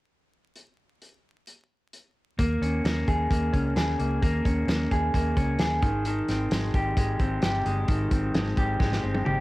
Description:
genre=jangly indie pop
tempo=131 BPM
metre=4/4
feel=straight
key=unclear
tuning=A4 = 440 Hz
part: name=loose indie drum kit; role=drums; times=0.6-9.4 s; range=hi-hat, kick drum, snare drum, toms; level=-27 LUFS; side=equal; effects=cassette tape
part: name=electric guitar through a small old amp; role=arpeggios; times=2.4-9.4 s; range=Eb3 to Ab4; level=-27 LUFS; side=equal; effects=none
part: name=vintage muted fingered electric bass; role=bass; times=2.4-9.4 s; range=G1 to Eb2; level=-29 LUFS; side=equal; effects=none
room=light reverb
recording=home recording on cassette, vinyl crackle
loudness=-23 LUFS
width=side -19 dB against mid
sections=0.6-2.4 A section; 2.4-9.4 B section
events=drum fill 8.8-9.4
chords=0.6 N.C.; 2.4 Eb7sus4; 5.8 Abmaj7

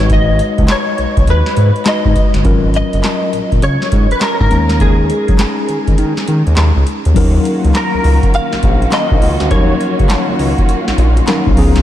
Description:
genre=R&B, new jack swing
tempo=102 BPM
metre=4/4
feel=swing 65% on 16ths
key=unclear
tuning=A4 = 439 Hz
part: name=direct-recorded clean electric guitar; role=melody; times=0.0-11.2 s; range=G#4 to E#5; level=-19 LUFS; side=equal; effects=ensemble chorus, tape echo
part: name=mellow tine electric piano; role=accompaniment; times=0.0-11.8 s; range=E#3 to B4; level=-18 LUFS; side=left 3 dB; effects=medium stereo tremolo
part: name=smooth synth bass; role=bass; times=0.0-11.8 s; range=F#1 to D#3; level=-14 LUFS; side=equal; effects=none
part: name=booming analog drum machine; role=drums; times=0.0-11.8 s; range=crash cymbal, handclaps, hi-hat, kick drum, snare drum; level=-15 LUFS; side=equal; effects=vintage 12-bit sampler grit
part: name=warm symphonic string section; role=sustained chords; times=7.2-11.8 s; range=C#3 to F#4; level=-20 LUFS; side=right 2 dB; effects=none
room=light reverb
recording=lossy compression artefacts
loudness=-10 LUFS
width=side -12 dB against mid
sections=0.0-7.2 A section; 7.2-11.8 B section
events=kick muted 6.0-7.2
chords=0.0 G#m7; 2.5 F#maj7; 4.5 D#7sus4; 7.2 D#m7

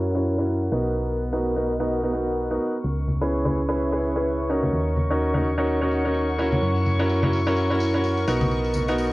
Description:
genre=piano house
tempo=127 BPM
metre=4/4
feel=swing 58% on 16ths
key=unclear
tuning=A4 = 440 Hz
part: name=clear studio string section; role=sustained chords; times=0.0-9.1 s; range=C#6 to F#6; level=-35 LUFS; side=left 3 dB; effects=vintage 12-bit sampler grit, low-pass filter, cassette tape
part: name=bright baby grand piano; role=riff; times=0.0-9.1 s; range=B3 to B4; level=-23 LUFS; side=equal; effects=low-pass filter, cassette tape, analog delay
part: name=solid FM bass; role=bass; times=0.0-9.1 s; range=B1 to F#2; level=-26 LUFS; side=equal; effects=none
part: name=airy breathy pad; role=texture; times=0.0-9.1 s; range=B3 to F#5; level=-33 LUFS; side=equal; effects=none
part: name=tambourine and congas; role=percussion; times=2.8-9.1 s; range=none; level=-29 LUFS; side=left 1 dB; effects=none
room=light reverb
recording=home recording on cassette, low-pass filter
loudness=-21 LUFS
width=side -19 dB against mid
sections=0.0-9.1 A section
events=filter sweep on grand piano 0.0-9.1; filter sweep on string section 0.0-9.1; filter sweep 0.0-9.1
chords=0.0 F#7; 0.7 Bmaj7; 2.8 C#m7; 4.7 D#m7; 6.6 F#7; 8.3 Bmaj7

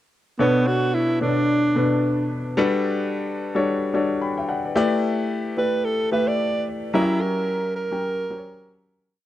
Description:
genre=amapiano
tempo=110 BPM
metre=4/4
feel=swing 58% on 16ths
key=B minor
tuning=A4 = 443 Hz
part: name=breathy alto saxophone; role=melody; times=0.4-2.3, 5.6-8.8 s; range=B3 to D5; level=-22 LUFS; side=right 2 dB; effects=tape echo
part: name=warm grand piano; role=accompaniment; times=0.4-9.1 s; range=B2 to B5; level=-22 LUFS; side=left 2 dB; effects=none
room=light reverb, small room ambience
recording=dark, warm production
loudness=-20 LUFS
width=side -13 dB against mid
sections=0.4-9.1 groove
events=grand piano fill 3.9-4.8; fade-out 6.9-9.1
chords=0.4 Bm9; 2.6 Gmaj7; 4.8 A7sus4; 6.9 F#7b9

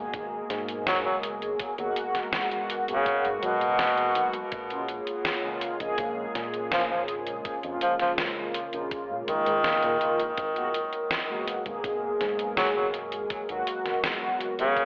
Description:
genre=vaporwave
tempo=82 BPM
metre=4/4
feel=straight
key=G# dorian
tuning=A4 = 441 Hz
part: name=mellow synth brass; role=accompaniment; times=0.0-14.8 s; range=B2 to G#4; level=-30 LUFS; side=equal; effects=lush chorus, tape echo
part: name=warbly tape-like pad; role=sustained chords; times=0.0-14.8 s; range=F#3 to C#5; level=-38 LUFS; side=equal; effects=chorus, built-in reverb
part: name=chorused synth bass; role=bass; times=0.0-14.8 s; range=F#1 to A#2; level=-40 LUFS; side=equal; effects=tube saturation
part: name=detuned 8-bit digital drum machine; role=drums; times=0.1-14.8 s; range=hi-hat, snare drum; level=-30 LUFS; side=equal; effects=vintage 12-bit sampler grit, studio ambience, gated reverb
part: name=electronic kick drum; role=drums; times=0.1-14.8 s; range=none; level=-41 LUFS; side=equal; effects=vintage 12-bit sampler grit, studio ambience
part: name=clear tenor saxophone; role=melody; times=0.9-14.8 s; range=B2 to F#3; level=-28 LUFS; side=equal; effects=vintage 12-bit sampler grit, tape echo
room=moderate lush hall reverb, RT60 1.8 s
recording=cassette tape, telephone sound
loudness=-25 LUFS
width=side -39 dB against mid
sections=0.0-14.8 A section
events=none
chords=0.0 G#m9; 4.5 A#m7; 10.4 G#m9

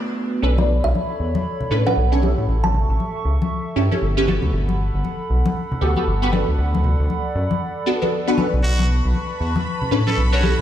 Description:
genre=deep house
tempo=117 BPM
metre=4/4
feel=swing 60% on 16ths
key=B minor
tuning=A4 = 441 Hz
part: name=hollow soft pad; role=sustained chords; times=0.0-10.6 s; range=A3 to C#6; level=-28 LUFS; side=right 1 dB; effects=chorus
part: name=filtered dub chord stab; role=stabs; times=0.4-10.6 s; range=B3 to C#5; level=-22 LUFS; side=right 1 dB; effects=phaser, ensemble chorus, dub echo
part: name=rubbery square bass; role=bass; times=0.4-10.6 s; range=G1 to A2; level=-19 LUFS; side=equal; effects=tube saturation
part: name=kalimba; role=melody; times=0.6-3.3 s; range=D5 to A5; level=-26 LUFS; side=right 2 dB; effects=dub echo
part: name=congas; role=percussion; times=0.6-10.6 s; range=none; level=-25 LUFS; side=left 3 dB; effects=none
part: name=trumpet with straight mute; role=melody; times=8.6-10.6 s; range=F#4 to A4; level=-29 LUFS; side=equal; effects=ping-pong delay
part: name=string machine, violins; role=texture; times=8.6-10.6 s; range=B5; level=-32 LUFS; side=right 3 dB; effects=ensemble chorus
room=light reverb, studio reverb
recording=played on a big sound system in a bare room, large studio reverb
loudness=-18 LUFS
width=side -11 dB against mid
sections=0.4-10.6 A section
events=break 0.0-0.4; drop 0.4-10.6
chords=0.4 Bm9; 2.5 A7; 4.3 Gmaj9; 6.6 D6; 8.6 Bm9

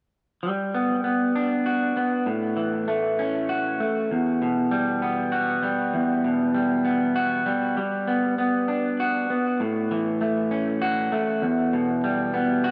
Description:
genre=rock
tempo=98 BPM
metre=3/4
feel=straight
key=E dorian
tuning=A4 = 441 Hz
part: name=electric guitar through a small old amp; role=arpeggios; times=0.4-12.7 s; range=E2 to F#4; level=-24 LUFS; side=equal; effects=tape echo
room=moderate plate reverb, RT60 2.9 s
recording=dark, warm production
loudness=-24 LUFS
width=mono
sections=0.4-12.7 A section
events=none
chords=0.4 Gmaj7; 2.3 A6; 4.1 Emadd9; 7.8 Gmaj7; 9.6 A6; 11.4 Em

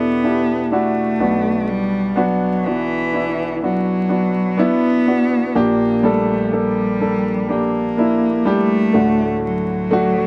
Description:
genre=pop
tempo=62 BPM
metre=4/4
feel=straight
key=unclear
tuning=A4 = 441 Hz
part: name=clear cello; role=melody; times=0.0-10.3 s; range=E3 to B3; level=-21 LUFS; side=equal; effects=none
part: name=warm grand piano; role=accompaniment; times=0.0-10.3 s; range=Bb1 to G5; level=-20 LUFS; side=equal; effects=none
room=moderate booth ambience, RT60 0.2 s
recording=dark, warm production, vinyl crackle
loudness=-18 LUFS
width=mono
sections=0.0-10.3 A section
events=none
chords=0.0 Em7; 1.2 Bm; 5.6 Gm/Bb; 8.9 D

